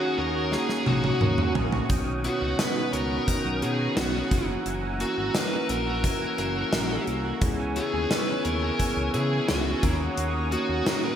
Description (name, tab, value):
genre	1980s-style pop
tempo	87 BPM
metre	4/4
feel	straight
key	B major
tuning	A4 = 440 Hz
part	biting lead guitar	melody	0.0-11.2 s	F#4 to B4	-30 LUFS	equal	overdrive
part	bell-like tine electric piano	accompaniment	0.0-11.2 s	A#2 to G#4	-30 LUFS	left 1 dB	medium stereo tremolo
part	lush unison pad	sustained chords	0.0-11.2 s	C#5 to E6	-34 LUFS	equal	chorus
part	electric guitar at the edge of break-up	riff	0.0-11.2 s	D#3 to G#4	-34 LUFS	right 4 dB	ensemble chorus, digital delay
part	smooth gliding synth bass	bass	0.2-10.8 s	F#1 to C#3	-31 LUFS	equal	none
part	gated 80s drum kit	drums	0.5-11.0 s	hi-hat, kick drum, snare drum, toms	-27 LUFS	equal	gated reverb
room	wet lush hall reverb, RT60 3.0 s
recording	bright 1980s-style digital production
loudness	-23 LUFS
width	side -9 dB against mid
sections	0.0-11.2 A section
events	drum fill 0.5-1.9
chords	0.0 D#m7; 1.9 Badd9; 4.3 F#7; 7.4 C#m7; 9.8 D#m7